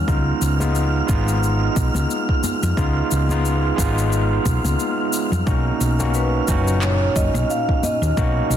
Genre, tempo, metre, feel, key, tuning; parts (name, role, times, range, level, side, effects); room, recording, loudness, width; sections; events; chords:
sunset chillout; 89 BPM; 4/4; swing 57% on 16ths; A4 = 440 Hz
overdriven tine electric piano; accompaniment; 0.0-8.6 s; A#2 to F#4; -23 LUFS; right 1 dB; auto-pan, digital delay
woody fretless electric bass; bass; 0.0-8.6 s; F#1 to E#2; -20 LUFS; equal
wind-like tuned noise texture; texture; 0.0-8.6 s; E#6; -29 LUFS; right 2 dB; built-in reverb
electronic kick drum; drums; 0.1-8.3 s; -22 LUFS; equal; overdrive
electronic shaker and handclaps; drums; 0.1-8.6 s; -30 LUFS; left 3 dB; overdrive
congas; percussion; 0.6-8.0 s; -31 LUFS; left 2 dB
vibraphone with medium mallets; melody; 6.2-8.6 s; B4 to E#5; -24 LUFS; right 1 dB; digital delay
light reverb; dense, heavily limited modern master; -17 LUFS; side -10 dB against mid
0.0-8.6 A section
0.1 C#9; 5.5 Bmaj9